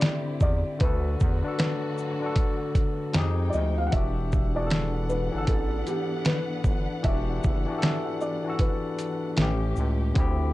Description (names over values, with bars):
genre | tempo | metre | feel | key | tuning
lo-fi hip hop | 77 BPM | 4/4 | swing 62% on 16ths | E minor | A4 = 441 Hz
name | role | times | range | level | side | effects
felt-muted upright piano | melody | 0.0-9.7 s | G4 to F#5 | -33 LUFS | equal | low-pass filter, tape echo, plate reverb
barky tine electric piano | accompaniment | 0.0-10.5 s | A2 to F#5 | -30 LUFS | left 3 dB | overdrive, low-pass filter, plate reverb
warm studio string section | sustained chords | 0.0-10.5 s | D3 to G5 | -38 LUFS | equal | low-pass filter, plate reverb
dusty soul sampler-style drum kit | drums | 0.0-10.4 s | hi-hat, kick drum, shaker, snare drum | -25 LUFS | equal | overdrive
growling FM bass | bass | 0.4-10.5 s | E1 to F2 | -28 LUFS | equal | none
room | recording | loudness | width
light reverb | dark, warm production | -24 LUFS | side -17 dB against mid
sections
0.0-10.5 A section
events
none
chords
0.0 D9sus4; 0.8 Bm7/D; 3.1 Fm9; 3.9 Em9; 9.4 A7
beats
0.03 | 0.81 1.59 2.37 3.15 | 3.92 4.70 5.48 6.26 | 7.04 7.82 8.60 9.38 | 10.16